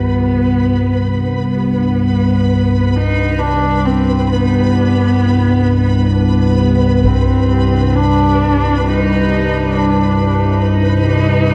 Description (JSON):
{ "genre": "dark ambient drone", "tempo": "free time", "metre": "none", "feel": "none", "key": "C harmonic minor", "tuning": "A4 = 440 Hz", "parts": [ { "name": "dark horsehead fiddle", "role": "melody", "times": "0.0-11.5 s", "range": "B3 to Eb4", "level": "-19 LUFS", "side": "equal", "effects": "tape echo" }, { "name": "gamelan-type bossed gongs", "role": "arpeggios", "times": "0.0-4.3 s", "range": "G2 to G4", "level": "-37 LUFS", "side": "equal", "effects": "none" }, { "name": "analog drone", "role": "drone", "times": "0.0-11.5 s", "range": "C2 to G2", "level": "-16 LUFS", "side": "equal", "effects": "subtle chorus" }, { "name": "flickering grainy texture", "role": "texture", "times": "0.0-11.5 s", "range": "B4", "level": "-25 LUFS", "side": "equal", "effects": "built-in reverb" }, { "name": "taiko ensemble", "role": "percussion", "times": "7.0-7.2 s", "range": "none", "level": "-21 LUFS", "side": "equal", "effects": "none" } ], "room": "wet plate reverb, RT60 2.5 s", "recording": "echo-heavy mix", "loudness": "-14 LUFS", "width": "mono", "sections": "0.0-11.5 A section", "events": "none", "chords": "0.0 Cmmaj7; 7.0 Cmadd9", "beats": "free time" }